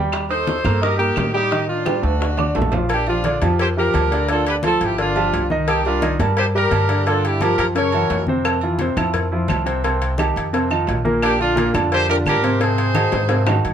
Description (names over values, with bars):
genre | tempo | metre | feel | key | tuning
latin, salsa | 173 BPM | 4/4 | straight | unclear | A4 = 440 Hz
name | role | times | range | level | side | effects
warm concert grand piano | accompaniment | 0.0-13.7 s | Bb2 to Eb6 | -22 LUFS | equal | none
upright bass | bass | 0.0-13.7 s | G1 to A2 | -23 LUFS | equal | none
bongos and cowbell | percussion | 0.1-13.7 s | none | -27 LUFS | left 6 dB | none
claves | percussion | 0.1-2.6, 8.5-13.6 s | none | -30 LUFS | left 1 dB | none
congas | percussion | 0.1-13.7 s | none | -28 LUFS | left 2 dB | none
timbales and agogo bells | percussion | 0.1-13.6 s | none | -25 LUFS | right 10 dB | none
warm horn section | melody | 0.3-8.2, 11.2-13.6 s | D4 to C#5 | -21 LUFS | left 1 dB | none
room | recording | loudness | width
light reverb | none | -16 LUFS | side -9 dB against mid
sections
0.0-2.9 A section; 2.9-13.7 B section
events
drum fill 1.9-2.9, 13.1-13.7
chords
0.1 Eb6; 1.5 F13; 2.2 D; 2.9 Bb6; 4.3 Dm; 5.0 G5; 5.7 Cm7; 7.1 G5; 7.8 F#7; 8.5 F5; 9.8 Cm; 10.5 F5; 11.2 Bb69; 12.6 Ab7